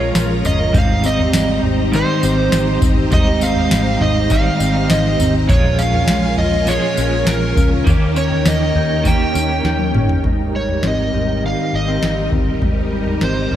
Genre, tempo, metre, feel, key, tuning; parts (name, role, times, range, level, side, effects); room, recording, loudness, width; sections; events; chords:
dream pop; 101 BPM; 4/4; straight; Ab major; A4 = 440 Hz
overdriven slide guitar; melody; 0.0-13.5 s; Bb4 to G5; -21 LUFS; right 2 dB; digital delay
electric guitar at the edge of break-up; accompaniment; 0.0-10.8 s; Ab2 to G4; -22 LUFS; right 3 dB; tremolo, lush chorus
string machine, violas; sustained chords; 0.0-13.6 s; G3 to Bb5; -25 LUFS; equal; ensemble chorus
mellow electric guitar; arpeggios; 0.0-13.6 s; Ab2 to G4; -20 LUFS; left 2 dB; analog chorus, digital delay
vintage muted fingered electric bass; bass; 0.0-13.6 s; G1 to Eb2; -21 LUFS; equal
booming analog drum machine; drums; 0.1-13.6 s; kick drum, snare drum, tambourine, toms; -18 LUFS; equal
light reverb; -14 LUFS; side -11 dB against mid
0.0-10.2 A section; 10.2-13.6 B section
drum fill 9.7-10.2
0.0 Bbm7; 0.7 Abmaj7; 5.5 Bbm7; 7.9 Eb7; 10.2 Abmaj7